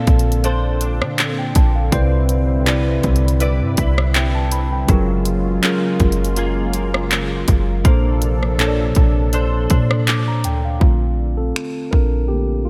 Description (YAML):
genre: contemporary R&B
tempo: 81 BPM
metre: 4/4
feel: swing 54% on 16ths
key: Bb major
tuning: A4 = 440 Hz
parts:
  - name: mellow tine electric piano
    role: accompaniment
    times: 0.0-12.7 s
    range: Bb2 to D6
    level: -24 LUFS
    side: equal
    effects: none
  - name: warm analog pad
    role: sustained chords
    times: 0.0-10.8 s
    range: C3 to B4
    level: -30 LUFS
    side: equal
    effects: chorus
  - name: direct-recorded clean electric guitar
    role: arpeggios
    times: 0.0-11.4 s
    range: Gb3 to D5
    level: -29 LUFS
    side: equal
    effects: ensemble chorus, digital delay
  - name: clean 808-style bass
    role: bass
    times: 0.1-12.7 s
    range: Gb1 to D3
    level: -21 LUFS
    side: equal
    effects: none
  - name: trap drum kit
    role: drums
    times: 0.1-12.1 s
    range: finger snaps, handclaps, hi-hat, kick drum, rim click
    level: -20 LUFS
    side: equal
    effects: overdrive
room: light reverb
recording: bright 1980s-style digital production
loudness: -17 LUFS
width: mono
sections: 0.0-10.8 A section; 10.8-12.7 B section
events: tine electric piano solo 10.8-12.7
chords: 0.0 Bbmaj9; 1.9 Cmaj9; 4.9 Gbmaj9; 7.8 Bbmaj9